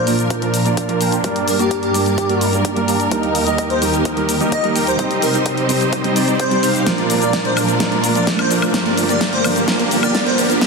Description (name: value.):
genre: EDM, festival progressive house.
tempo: 128 BPM.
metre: 4/4.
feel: straight.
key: unclear.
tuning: A4 = 440 Hz.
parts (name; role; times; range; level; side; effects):
airy dreamy lead; melody; 0.0-10.4 s; G4 to Eb5; -22 LUFS; equal; chorus, dub echo.
warm concert grand piano; accompaniment; 0.0-10.7 s; F3 to Eb5; -22 LUFS; right 3 dB; sidechain pumping, dub echo.
dark studio string section; sustained chords; 0.0-10.7 s; Eb2 to C5; -23 LUFS; left 1 dB; sidechain pumping.
riser; sound effects; 1.8-10.7 s; none; -25 LUFS; right 1 dB; none.
supersaw chords; riff; 0.1-10.7 s; Bb3 to G5; -20 LUFS; right 1 dB; phaser, sidechain pumping, low-pass filter, dub echo.
big-room dance drum kit; drums; 0.1-10.7 s; cabasa, hi-hat, snare drum, woodblock; -22 LUFS; left 1 dB; small room ambience.
electronic kick drum; drums; 0.3-10.7 s; none; -27 LUFS; equal; high-pass filter on kick, small room ambience.
room: wet lush hall reverb, RT60 1.8 s.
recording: dense, heavily limited modern master, high-pass filter.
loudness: -14 LUFS.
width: side -3 dB against mid.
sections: 0.0-10.7 A section.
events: build-up 0.0-10.7; filter sweep on supersaw synth 0.0-10.7; riser 1.8-10.7; drum fill 6.9-10.7.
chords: 0.0 Bb; 1.2 Gm; 3.1 Eb; 5.0 Cm; 6.9 Bb; 8.7 Gm.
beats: 0.30 0.77 | 1.24 1.71 2.18 2.65 | 3.12 3.58 4.05 4.52 | 4.99 5.46 5.93 6.40 | 6.87 7.33 7.80 8.27 | 8.74 9.21 9.68 10.15 | 10.62.